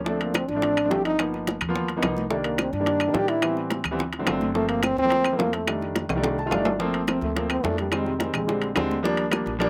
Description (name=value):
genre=Afro-Cuban jazz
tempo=214 BPM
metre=4/4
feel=straight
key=unclear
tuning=A4 = 440 Hz
part: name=warm grand piano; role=accompaniment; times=0.0-9.7 s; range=D3 to A5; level=-29 LUFS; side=equal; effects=slapback echo
part: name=upright bass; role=bass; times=0.0-9.7 s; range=G1 to A2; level=-37 LUFS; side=equal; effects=none
part: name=breathy trombone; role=melody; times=0.1-8.7 s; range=C3 to G4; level=-27 LUFS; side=equal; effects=none
part: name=bongos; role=percussion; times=0.1-9.7 s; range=none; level=-34 LUFS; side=equal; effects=none
part: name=congas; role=percussion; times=0.1-9.7 s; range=none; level=-37 LUFS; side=equal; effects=none
part: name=timbales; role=percussion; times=0.2-9.7 s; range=none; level=-33 LUFS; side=equal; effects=slapback echo
part: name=claves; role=percussion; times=0.4-9.5 s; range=none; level=-36 LUFS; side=equal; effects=none
room=little or no reverb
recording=recorded outdoors, with no room sound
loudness=-25 LUFS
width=mono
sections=0.0-6.8 A section; 6.8-9.7 B section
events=drum fill 6.1-6.8; grand piano fill 6.2-6.8; trombone solo 6.8-9.7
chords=0.1 Dm7; 1.2 G7alt; 2.3 Cm9; 3.4 Am7; 4.0 D7; 4.6 Gm11; 5.7 F13; 6.8 Gm11; 7.9 Fm7; 8.5 Bb13; 9.0 Ebmaj9